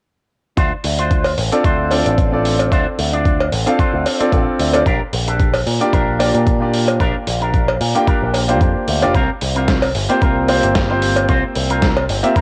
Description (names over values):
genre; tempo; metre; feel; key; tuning
nu-disco, nu disco; 112 BPM; 4/4; swing 55% on 16ths; unclear; A4 = 442 Hz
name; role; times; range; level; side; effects
electric guitar with an envelope filter; riff; 0.6-12.4 s; C4 to D5; -26 LUFS; equal; lush chorus, tape echo
picked electric bass with an envelope filter; bass; 0.6-12.2 s; F1 to Bb2; -22 LUFS; equal; sidechain pumping
dusty soul sampler-style drum kit; drums; 0.6-12.4 s; hi-hat, snare drum; -26 LUFS; equal; overdrive, cassette tape
electronic kick drum; drums; 0.6-12.4 s; none; -20 LUFS; equal; overdrive, cassette tape
cowbell; percussion; 1.2-12.1 s; none; -24 LUFS; equal; none
clear concert grand piano; accompaniment; 1.5-12.4 s; Bb3 to G5; -21 LUFS; equal; sidechain pumping, tape echo
room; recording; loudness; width
light reverb; home recording on cassette; -16 LUFS; mono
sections
0.6-12.4 A section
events
none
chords
0.6 Dm7; 4.9 Bb6; 9.1 C7sus4